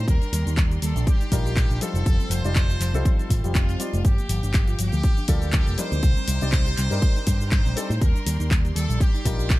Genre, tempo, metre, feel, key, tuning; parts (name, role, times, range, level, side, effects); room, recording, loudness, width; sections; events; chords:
nu-disco, nu disco; 121 BPM; 4/4; swing 55% on 16ths; A4 = 442 Hz
brilliant trumpet section; melody; 0.0-9.6 s; F4 to C5; -33 LUFS; equal; tape echo
clear studio string section; sustained chords; 0.0-9.6 s; Bb3 to D6; -40 LUFS; equal; sidechain pumping
soft round pluck; arpeggios; 0.0-9.6 s; F3 to G4; -33 LUFS; equal; wide subtle chorus, sidechain pumping, tape echo
picked electric bass with an envelope filter; bass; 0.0-9.6 s; F1 to A2; -24 LUFS; equal
electronic kick drum; drums; 0.1-9.6 s; -20 LUFS; equal
house drum kit; drums; 0.1-9.6 s; handclaps, hi-hat, shaker; -31 LUFS; left 1 dB
warm baby grand piano; accompaniment; 1.3-9.6 s; G3 to D5; -32 LUFS; left 3 dB; sidechain pumping
digital ambience; -20 LUFS; side -18 dB against mid
0.0-9.6 A section
0.1 Ebmaj7; 1.8 F7; 4.0 Gm7; 6.0 Cm7; 8.0 Ebmaj7